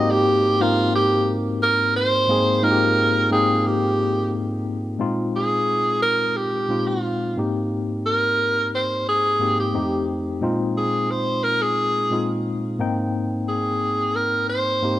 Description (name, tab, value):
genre	soul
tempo	88 BPM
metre	4/4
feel	straight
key	unclear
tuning	A4 = 440 Hz
part	clear alto saxophone	melody	0.0-15.0 s	F4 to Eb5	-20 LUFS	right 1 dB	none
part	tine electric piano	accompaniment	0.0-15.0 s	F2 to G5	-22 LUFS	left 2 dB	medium stereo tremolo
room	light reverb, small room ambience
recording	none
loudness	-19 LUFS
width	side -14 dB against mid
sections	0.0-5.0 A section; 5.0-15.0 B section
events	none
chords	0.0 Abmaj7; 5.0 Bb7sus4; 7.4 Abmaj7; 9.8 F7; 10.4 Bb7sus4; 12.8 Abmaj7